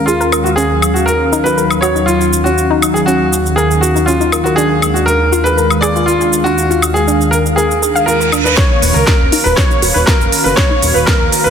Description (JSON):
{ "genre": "progressive house", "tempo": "120 BPM", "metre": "4/4", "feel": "straight", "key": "Eb minor", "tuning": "A4 = 440 Hz", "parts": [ { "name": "clear grand piano", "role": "melody", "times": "0.0-11.5 s", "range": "F4 to D5", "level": "-15 LUFS", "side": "equal", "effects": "ping-pong delay" }, { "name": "warm analog pad", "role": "sustained chords", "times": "0.0-11.5 s", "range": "Eb2 to F5", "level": "-16 LUFS", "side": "equal", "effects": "chorus, sidechain pumping" }, { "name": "soft round pluck", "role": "arpeggios", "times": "0.0-11.2 s", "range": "Db4 to F5", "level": "-18 LUFS", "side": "left 1 dB", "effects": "chorus, sidechain pumping, ping-pong delay" }, { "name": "house drum kit", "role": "drums", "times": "0.1-11.5 s", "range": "hi-hat, shaker, snare drum, woodblock", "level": "-18 LUFS", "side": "equal", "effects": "none" }, { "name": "reverse cymbal", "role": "sound effects", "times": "8.0-8.6 s", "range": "none", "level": "-21 LUFS", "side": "right 6 dB", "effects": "none" }, { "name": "soft supersaw", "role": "second line", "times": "8.6-11.5 s", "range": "Bb4 to Db5", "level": "-18 LUFS", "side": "right 1 dB", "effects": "cassette tape, sidechain pumping, ping-pong delay" }, { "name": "electronic kick drum", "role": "drums", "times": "8.6-11.2 s", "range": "none", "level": "-13 LUFS", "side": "equal", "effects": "none" }, { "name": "fat analog bass", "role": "bass", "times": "8.8-11.5 s", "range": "Eb1 to Db2", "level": "-17 LUFS", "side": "equal", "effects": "sidechain pumping" } ], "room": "moderate concert hall reverb, RT60 2.4 s", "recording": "dense, heavily limited modern master", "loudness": "-10 LUFS", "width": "side -7 dB against mid", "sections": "0.0-8.6 A section; 8.6-11.5 B section", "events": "filter sweep on synth pluck 0.0-8.6; reverse cymbal 8.0-8.6; build-up 8.6-11.5; drum fill 8.6-11.5", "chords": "0.0 Bbm7/Eb; 0.6 Ebm7; 4.6 Bb7/Eb; 8.6 Ebm7" }